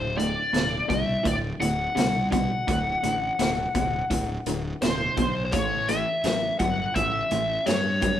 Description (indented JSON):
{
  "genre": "blues rock power trio and southern rock",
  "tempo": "84 BPM",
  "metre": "4/4",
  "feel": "straight",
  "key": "D mixolydian",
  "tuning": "A4 = 439 Hz",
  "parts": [
    { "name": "biting lead guitar", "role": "melody", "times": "0.0-8.2 s", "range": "C5 to F#5", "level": "-26 LUFS", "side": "left 2 dB", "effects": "wah, overdrive" },
    { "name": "raw garage guitar", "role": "riff", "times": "0.0-8.2 s", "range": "D2 to F#3", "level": "-28 LUFS", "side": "equal", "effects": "overdrive" },
    { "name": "fuzz fingered electric bass", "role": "bass", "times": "0.0-8.2 s", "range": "D1 to G2", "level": "-31 LUFS", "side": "equal", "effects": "overdrive" },
    { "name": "raw garage drum kit", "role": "drums", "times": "0.2-8.2 s", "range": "hi-hat, kick drum, snare drum", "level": "-31 LUFS", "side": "equal", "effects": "none" }
  ],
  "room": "wet stone room reverb, RT60 1.2 s",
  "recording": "band playing live in one room",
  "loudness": "-22 LUFS",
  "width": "side -10 dB against mid",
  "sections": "0.0-8.2 A section",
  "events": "none",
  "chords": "0.0 D7; 5.5 A7"
}